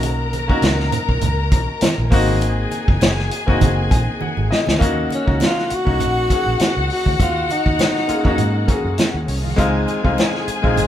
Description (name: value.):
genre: lush 1970s-style soul.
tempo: 101 BPM.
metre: 4/4.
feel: swing 54% on 16ths.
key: unclear.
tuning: A4 = 440 Hz.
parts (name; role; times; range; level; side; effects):
warm studio string section; second line; 0.0-10.9 s; Db4 to Bb5; -25 LUFS; left 3 dB; none.
clear baby grand piano; accompaniment; 0.0-10.9 s; Ab3 to Ab5; -22 LUFS; left 2 dB; none.
vintage muted fingered electric bass; bass; 0.0-10.9 s; F1 to Ab2; -22 LUFS; equal; none.
vintage drum kit; drums; 0.0-10.9 s; hi-hat, kick drum, snare drum; -19 LUFS; equal; none.
congas; percussion; 0.0-10.9 s; none; -27 LUFS; right 5 dB; none.
breathy tenor saxophone; melody; 5.1-8.7 s; Db4 to Gb4; -22 LUFS; equal; none.
room: moderate studio reverb, RT60 0.5 s.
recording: band playing live in one room.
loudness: -15 LUFS.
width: side -11 dB against mid.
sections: 0.0-4.8 A section; 4.8-10.9 B section.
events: grand piano fill 3.6-4.8; drum fill 4.2-4.8.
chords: 0.0 Cbmaj7; 2.1 Ab7; 4.8 Ebm9; 9.6 Dbmaj9.